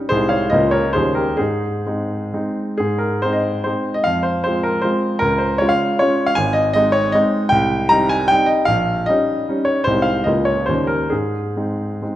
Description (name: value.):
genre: classical, romantic triple-time dance for piano with dotted rhythms.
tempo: 124-164 BPM.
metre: 3/4.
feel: rubato.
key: Ab major.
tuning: A4 = 440 Hz.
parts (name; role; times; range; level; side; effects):
warm grand piano; solo; 0.0-12.2 s; Ab1 to Bb5; -16 LUFS; equal; none.
room: wet recital hall reverb, RT60 1.5 s.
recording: dark, warm production.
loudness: -16 LUFS.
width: side -13 dB against mid.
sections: 0.0-2.8 A section; 2.8-12.2 B section.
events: none.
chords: 0.1 Ab/C; 0.5 Bbm7/Db; 1.0 Eb7; 1.4 Ab; 4.1 Fm; 5.2 Db; 6.4 Ab; 7.5 Cm; 8.7 Eb7/Bb; 9.9 Ab/C; 10.3 Bbm7/Db; 10.7 Eb7; 11.1 Ab.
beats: | 0.12 0.52 0.95 | 1.40 1.86 2.33 | 2.79 3.23 3.65 | 4.05 4.45 4.84 | 5.22 5.61 6.01 | 6.38 6.76 7.15 | 7.52 7.91 8.30 | 8.68 9.08 9.48 | 9.87 10.26 10.69 | 11.12 11.56 12.02.